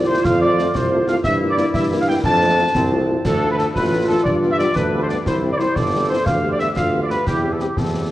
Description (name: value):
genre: military-style march for wind band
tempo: 120 BPM (dotted quarters)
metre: 6/8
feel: straight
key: C major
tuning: A4 = 440 Hz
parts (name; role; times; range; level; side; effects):
- dark trumpet section; melody; 0.0-8.1 s; G4 to A5; -20 LUFS; equal; none
- dark woodwind section; second line; 0.0-8.1 s; C4 to A4; -23 LUFS; equal; none
- clear tuba; bass; 0.0-8.1 s; G1 to G2; -21 LUFS; right 2 dB; none
- dark French horn section; accompaniment; 0.1-8.0 s; G3 to G4; -27 LUFS; left 3 dB; none
- concert snare drum, concert bass drum and clash cymbals; drums; 0.2-8.1 s; none; -25 LUFS; equal; none
room: moderate scoring stage reverb, RT60 2.1 s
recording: worn, warbling old tape, cassette tape, warbly pitch drift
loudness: -16 LUFS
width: side -15 dB against mid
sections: 0.0-8.1 A section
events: none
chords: 0.0 F; 1.2 Edim/G; 2.3 F; 3.3 Dm; 4.3 G7; 5.3 C; 6.3 G7/D; 7.3 C/E